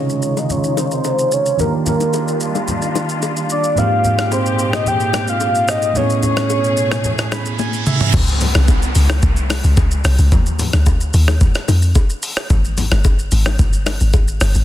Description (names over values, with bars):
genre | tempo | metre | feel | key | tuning
amapiano | 110 BPM | 4/4 | straight | unclear | A4 = 440 Hz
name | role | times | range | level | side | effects
soft octave-layered synth lead | melody | 0.0-7.6 s | Bb4 to G5 | -18 LUFS | left 1 dB | chorus, low-pass filter, ping-pong delay
bell-like tine electric piano | accompaniment | 0.0-8.2 s | Ab2 to B5 | -21 LUFS | right 4 dB | low-pass filter
clear studio string section | sustained chords | 0.0-8.1 s | Bb2 to G#4 | -24 LUFS | left 2 dB | low-pass filter
jungle sampler-style drum kit | drums | 0.1-14.6 s | crash cymbal, hi-hat, kick drum, rim click, shaker, toms | -18 LUFS | equal | soft clipping on snare
bongos and congas | percussion | 0.4-14.3 s | none | -25 LUFS | left 5 dB | none
reverse cymbal and downlifter | sound effects | 7.4-12.5 s | none | -25 LUFS | right 2 dB | none
deep log drum bass | bass | 8.1-14.6 s | G1 to F2 | -14 LUFS | equal | none
room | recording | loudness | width
little or no reverb | dense, heavily limited modern master | -14 LUFS | side -13 dB against mid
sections
0.0-8.1 A section; 8.1-14.6 B section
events
filter sweep 0.0-8.1; tine electric piano fill 7.0-8.1; reverse cymbal 7.4-8.1; drum fill 7.6-8.1; drop 8.1-14.6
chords
0.0 Dbmaj9; 1.6 Ebmaj9; 3.8 Abmaj9; 6.0 Amaj9; 8.1 N.C.; 10.3 Ebsus2; 12.5 N.C.